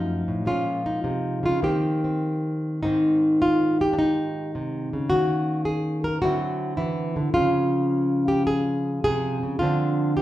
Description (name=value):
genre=solo jazz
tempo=105 BPM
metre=4/4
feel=swing 68% on 8ths, rubato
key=Ab major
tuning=A4 = 440 Hz
part: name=flamenco guitar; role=solo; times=0.0-10.2 s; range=Gb2 to Bb4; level=-21 LUFS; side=equal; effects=none
room=wet large studio reverb, RT60 0.8 s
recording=band playing live in one room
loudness=-21 LUFS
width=side -14 dB against mid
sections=0.0-2.8 A section; 2.8-10.2 B section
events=none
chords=0.5 Bbm7; 1.6 Eb6; 2.8 Abmaj7; 5.1 Ebm7; 6.2 D9; 7.3 Dbmaj7; 9.6 Dm7